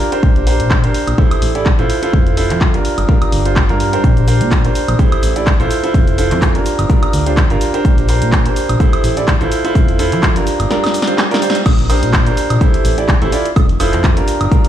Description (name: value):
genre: piano house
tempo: 126 BPM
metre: 4/4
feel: swing 55% on 16ths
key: unclear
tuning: A4 = 440 Hz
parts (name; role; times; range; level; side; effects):
- clear upright piano; riff; 0.0-14.7 s; D4 to D5; -17 LUFS; right 2 dB; sidechain pumping, digital delay
- punchy analog drum machine; drums; 0.1-14.7 s; crash cymbal, handclaps, hi-hat, shaker, snare drum, woodblock; -21 LUFS; equal; none
- fat analog bass; bass; 0.2-14.5 s; F1 to Bb2; -16 LUFS; equal; sidechain pumping
- electronic kick drum; drums; 0.2-14.6 s; none; -13 LUFS; equal; none
room: light reverb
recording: played on a big sound system in a bare room, large studio reverb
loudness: -11 LUFS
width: side -11 dB against mid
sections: 0.0-11.7 A section; 11.7-14.7 B section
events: drum fill 10.7-11.7; band accent 11.5; drop 11.7-14.7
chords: 0.2 Bb69; 1.2 Am7; 1.9 Fmaj7; 2.8 Gm7; 4.0 Bb69; 5.0 Am7; 5.7 Fmaj7; 6.7 Gm7; 7.8 Bb69; 8.8 Am7; 9.5 Fmaj7; 10.5 Gm7; 11.7 Bb69; 12.6 Am7; 13.3 Fmaj7